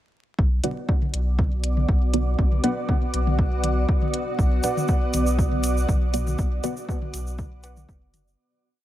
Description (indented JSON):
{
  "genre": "dub techno",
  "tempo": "120 BPM",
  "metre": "4/4",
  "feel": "swing 54% on 16ths",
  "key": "B minor",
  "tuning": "A4 = 442 Hz",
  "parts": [
    { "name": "granular cloud pad", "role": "sustained chords", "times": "0.8-8.3 s", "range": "B3 to D5", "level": "-28 LUFS", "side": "right 1 dB", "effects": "built-in reverb, sidechain pumping" },
    { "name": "warm sub bass", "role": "bass", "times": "0.4-8.4 s", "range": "F#1 to B1", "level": "-24 LUFS", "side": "equal", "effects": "sidechain pumping" },
    { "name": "electronic kick drum", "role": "drums", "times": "0.4-8.0 s", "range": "none", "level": "-22 LUFS", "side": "equal", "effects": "none" },
    { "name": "warbly dusty pluck", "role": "riff", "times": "0.6-7.8 s", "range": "B4 to F#5", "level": "-34 LUFS", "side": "right 2 dB", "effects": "chorus, sidechain pumping, dub echo" },
    { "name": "filtered dub chord stab", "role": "stabs", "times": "0.6-6.7 s", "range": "B3 to D5", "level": "-29 LUFS", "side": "right 1 dB", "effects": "phaser, sidechain pumping, dub echo" },
    { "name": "electronic hi-hat", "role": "drums", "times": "0.6-8.2 s", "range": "none", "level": "-31 LUFS", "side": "left 1 dB", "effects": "none" },
    { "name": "electronic toms", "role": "percussion", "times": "0.6-8.2 s", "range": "none", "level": "-33 LUFS", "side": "left 3 dB", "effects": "sidechain pumping on toms" },
    { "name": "tube shaker", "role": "percussion", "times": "4.4-8.4 s", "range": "none", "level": "-37 LUFS", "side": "right 1 dB", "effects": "none" }
  ],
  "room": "light reverb, digital ambience",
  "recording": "vinyl crackle",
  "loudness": "-21 LUFS",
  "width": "side -13 dB against mid",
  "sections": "0.4-8.4 groove",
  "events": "filter sweep on synth stab 0.4-8.4; fade-out 5.7-8.4",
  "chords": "0.4 Bm"
}